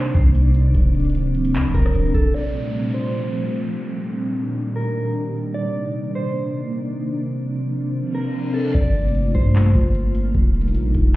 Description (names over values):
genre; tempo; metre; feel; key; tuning
hip hop, atmospheric cloud-rap; 150 BPM; 4/4; half-time; G minor; A4 = 439 Hz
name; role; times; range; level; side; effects
mellow electric guitar; melody; 0.0-9.9 s; A4 to D5; -29 LUFS; right 1 dB; wide subtle chorus, low-pass filter, tape echo
glassy FM pad; sustained chords; 0.0-11.2 s; Bb2 to F4; -22 LUFS; equal; ensemble chorus, built-in reverb, sidechain pumping, low-pass filter
clean 808-style bass; bass; 0.0-2.3, 8.7-11.2 s; D1 to C3; -19 LUFS; equal; none
booming analog drum machine; drums; 0.1-2.3, 8.7-11.1 s; crash cymbal, handclaps, hi-hat, kick drum, rim click; -18 LUFS; equal; none
downlifter and reverse cymbal; sound effects; 2.3-5.5, 8.1-8.7 s; none; -42 LUFS; equal; none
room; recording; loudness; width
light reverb; heard muffled through a wall, stone room reverb, EQ; -18 LUFS; side -17 dB against mid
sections
0.0-2.3 A section; 2.3-8.7 B section; 8.7-11.2 C section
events
filter sweep 2.3-8.7; reverse cymbal 8.1-8.7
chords
0.0 Cm9; 0.7 Dm7; 2.3 Gm11; 3.9 Ebmaj7; 5.5 Cm9; 7.1 Dm7; 8.7 Gm11; 10.3 Ebmaj7